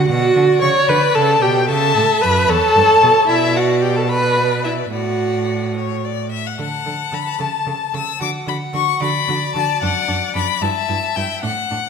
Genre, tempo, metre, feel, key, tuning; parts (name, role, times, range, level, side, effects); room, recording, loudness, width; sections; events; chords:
quick classical-period movement for string quartet; 74 BPM (dotted quarters); 6/8; straight; D major; A4 = 439 Hz
rich violin; second line; 0.0-11.9 s; D5 to C#6; -20 LUFS; left 4 dB
rich viola; accompaniment; 0.0-11.8 s; D4 to C#5; -18 LUFS; right 2 dB
clear violin; melody; 0.1-11.9 s; C#5 to E6; -22 LUFS; left 10 dB
clear cello; bass; 0.1-11.8 s; E2 to D3; -22 LUFS; right 4 dB
wet scoring stage reverb, RT60 1.6 s; minimal, uncompressed stereo recording; -15 LUFS; side -6 dB against mid
0.0-6.6 A section; 6.6-11.9 B section
0.1 Bm; 1.7 A; 3.3 Bm; 4.9 D/A; 5.8 A; 6.6 D; 7.4 A; 8.2 D; 10.6 Em